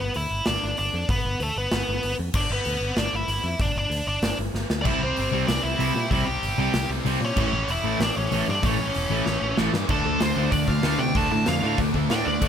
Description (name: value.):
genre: punk rock.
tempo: 191 BPM.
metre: 4/4.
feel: straight.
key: unclear.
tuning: A4 = 439 Hz.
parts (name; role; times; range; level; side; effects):
nasal lead guitar with a parked wah; melody; 0.0-12.5 s; A3 to A5; -27 LUFS; equal; overdrive.
picked electric bass; bass; 0.0-12.5 s; E1 to C3; -29 LUFS; equal; none.
big rock drum kit; drums; 0.1-12.5 s; crash cymbal, hi-hat, kick drum, snare drum, splash cymbal; -28 LUFS; equal; none.
high-gain distorted guitar; riff; 4.8-12.5 s; A2 to D4; -30 LUFS; equal; distortion.
sludgy distorted guitar; riff; 4.8-12.5 s; A2 to D4; -28 LUFS; left 10 dB; overdrive.
distorted electric guitar; riff; 4.9-12.5 s; A2 to D4; -29 LUFS; right 15 dB; distortion.
room: little or no reverb.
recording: none.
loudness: -21 LUFS.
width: side -8 dB against mid.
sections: 0.0-9.9 A section; 9.9-12.5 B section.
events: half time 0.0-9.9; drum fill 4.5-4.9, 9.3-9.9; lead electric guitar solo 9.9-12.5.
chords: 0.0 G; 4.9 C; 7.4 A; 9.9 Dm.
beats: 0.15 0.46 0.78 | 1.09 1.40 1.72 2.03 | 2.35 2.66 2.97 3.29 | 3.60 3.92 4.23 4.54 | 4.86 5.17 5.49 5.80 | 6.12 6.43 6.75 7.06 | 7.38 7.69 8.01 8.32 | 8.64 8.95 9.27 9.58 | 9.90 10.21 10.53 10.84 | 11.16 11.47 11.79 12.11 | 12.42.